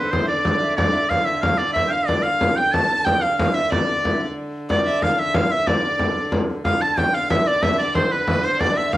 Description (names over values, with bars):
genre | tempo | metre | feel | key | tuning
medieval dance | 123 BPM (dotted quarters) | 6/8 | straight | D dorian | A4 = 440 Hz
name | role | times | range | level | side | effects
bright shawm | melody | 0.0-9.0 s | B4 to A5 | -21 LUFS | equal | cassette tape
breathy mellow alto recorder | second line | 0.0-9.0 s | A4 to A5 | -28 LUFS | left 1 dB | none
clear violin | second line | 0.0-9.0 s | B4 to A5 | -26 LUFS | right 3 dB | cassette tape, plate reverb
rich hurdy-gurdy | drone | 0.0-9.0 s | D3 | -30 LUFS | equal | stereo widening, cassette tape
frame drum | percussion | 0.1-9.0 s | none | -22 LUFS | left 1 dB | none
room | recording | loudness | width
wet studio reverb, RT60 0.6 s | home recording on cassette | -17 LUFS | side -15 dB against mid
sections
0.0-6.6 A section; 6.6-9.0 B section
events
none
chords
none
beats
0.29 | 0.78 1.27 | 1.76 2.25 | 2.74 3.23 | 3.72 4.21 | 4.70 5.18 | 5.67 6.16 | 6.65 7.14 | 7.62 8.11 | 8.60